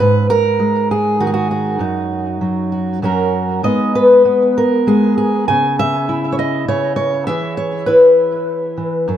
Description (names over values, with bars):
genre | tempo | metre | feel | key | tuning
folk, solo fingerstyle acoustic guitar | 99 BPM | 3/4 | rubato | unclear | A4 = 440 Hz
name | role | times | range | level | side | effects
fingerpicked steel-string acoustic guitar | solo | 0.0-9.2 s | F#2 to G#5 | -13 LUFS | equal | tape echo
room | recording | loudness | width
light reverb | none | -13 LUFS | side -10 dB against mid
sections
0.0-9.2 A section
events
none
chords
0.0 G#5; 1.8 D#m/F#; 3.0 F#; 3.6 G#m; 5.5 C#m; 7.3 E